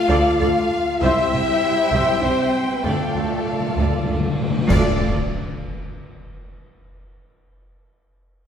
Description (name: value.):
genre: cinematic, epic orchestral film score.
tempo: 98 BPM.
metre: 3/4.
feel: straight.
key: D minor.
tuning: A4 = 438 Hz.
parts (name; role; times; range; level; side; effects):
rich symphonic violin section; melody; 0.0-5.0 s; A4 to F5; -28 LUFS; left 1 dB; none.
flute section; second line; 0.0-5.0 s; A4 to F5; -26 LUFS; left 1 dB; none.
warm studio violin section; second line; 0.0-5.0 s; D5 to G5; -29 LUFS; left 2 dB; none.
dark French horn section; sustained chords; 0.0-5.0 s; A3 to F4; -24 LUFS; left 2 dB; none.
warm symphonic string section; sustained chords; 0.0-5.1 s; G3 to F5; -27 LUFS; equal; none.
warm symphonic viola section; accompaniment; 0.1-5.1 s; A4 to E5; -28 LUFS; right 1 dB; none.
rich symphonic cello section; bass; 0.1-5.0 s; C2 to D2; -26 LUFS; right 1 dB; none.
rich symphonic double bass section; bass; 0.1-5.1 s; C2 to D2; -26 LUFS; right 2 dB; none.
cymbal swell, clash cymbals and concert bass drum; percussion; 1.0-5.9 s; none; -29 LUFS; equal; none.
timpani; percussion; 2.9-5.0 s; D3; -26 LUFS; left 3 dB; none.
impact; sound effects; 4.8-6.6 s; none; -30 LUFS; equal; none.
room: wet scoring stage reverb, RT60 1.8 s.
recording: heard from further back in the room.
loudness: -17 LUFS.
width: side -8 dB against mid.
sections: 0.0-4.7 A section; 4.7-6.6 B section.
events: timpani fill 2.9-4.7; band accent 4.7-5.3; impact 4.7-6.6.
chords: 0.0 Dm; 1.0 C; 2.9 Dm.